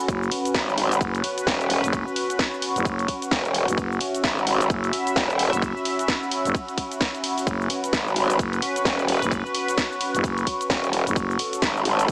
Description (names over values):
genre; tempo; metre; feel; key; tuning
bass house; 130 BPM; 4/4; swing 60% on 16ths; unclear; A4 = 440 Hz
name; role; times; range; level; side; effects
sweeping resonant pad; sustained chords; 0.0-12.1 s; C#4 to E5; -28 LUFS; equal; chorus, vintage 12-bit sampler grit, sidechain pumping
garage drum kit; drums; 0.0-12.1 s; cabasa, hi-hat, ride cymbal, snare drum; -27 LUFS; equal; none
warbly tape-like pad; texture; 0.0-12.1 s; C#4 to C#6; -30 LUFS; equal; chorus, built-in reverb, sidechain pumping
growling FM bass; bass; 0.1-12.1 s; F#1; -25 LUFS; equal; tube saturation, sidechain pumping
electronic kick drum; drums; 0.1-12.1 s; none; -26 LUFS; equal; none
growl bass; bass; 0.5-12.1 s; E1 to G#1; -22 LUFS; equal; chorus, tube saturation, sidechain pumping
room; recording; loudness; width
light reverb; small speaker sound; -21 LUFS; side -25 dB against mid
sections
0.0-12.1 A section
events
none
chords
0.0 F#5